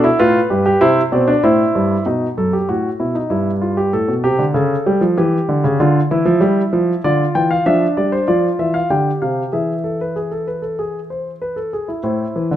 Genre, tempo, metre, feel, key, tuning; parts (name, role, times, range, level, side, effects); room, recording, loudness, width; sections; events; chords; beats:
classical, baroque-style 3-part fugue for grand piano; 96 BPM; 4/4; straight; A4 = 440 Hz
dark grand piano; solo; 0.0-12.6 s; F#2 to G5; -14 LUFS; equal
moderate recital hall reverb, RT60 1.5 s; close, detailed microphones; -14 LUFS; side -11 dB against mid
0.0-2.1 A section; 2.1-12.1 B section
0.0 G7; 0.8 C; 2.1 B7; 3.3 Em/G; 4.6 A7/C#; 5.8 Dm; 7.0 Dm11; 9.5 E; 12.1 Am
0.18 0.81 1.43 | 2.06 2.69 3.31 3.94 | 4.56 5.18 5.80 6.42 | 7.04 7.66 8.28 8.90 | 9.53 10.16 10.79 11.42 | 12.05